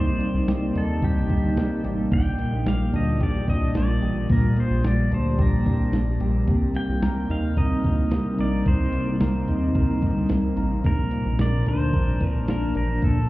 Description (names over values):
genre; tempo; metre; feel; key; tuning
dream pop; 110 BPM; 4/4; straight; C minor; A4 = 440 Hz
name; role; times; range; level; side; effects
pedal steel guitar; melody; 0.0-13.3 s; G4 to G5; -33 LUFS; equal; ping-pong delay, shimmer reverb
ethereal airy pad; sustained chords; 0.0-13.3 s; C3 to D5; -27 LUFS; equal; ensemble chorus, built-in reverb, shimmer reverb
electric guitar at the edge of break-up; arpeggios; 0.0-13.3 s; Bb2 to Bb4; -26 LUFS; left 1 dB; wide subtle chorus, shimmer reverb
chorused synth bass; bass; 0.0-13.3 s; A1 to Eb2; -25 LUFS; equal; none
crisp 8-bit digital drum machine; drums; 0.2-13.2 s; hi-hat, kick drum, snare drum; -24 LUFS; equal; none
room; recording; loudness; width
light reverb, digital ambience; heard muffled through a wall, club reverb, EQ; -20 LUFS; side -18 dB against mid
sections
0.0-13.3 A section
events
none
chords
0.0 Cm7; 2.1 Gm7; 6.5 Cm7; 10.8 Bb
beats
0.48 1.03 1.57 | 2.12 2.66 3.21 3.75 | 4.30 4.84 5.39 5.93 | 6.48 7.03 7.57 8.12 | 8.66 9.21 9.75 10.30 | 10.84 11.39 11.94 12.48 | 13.03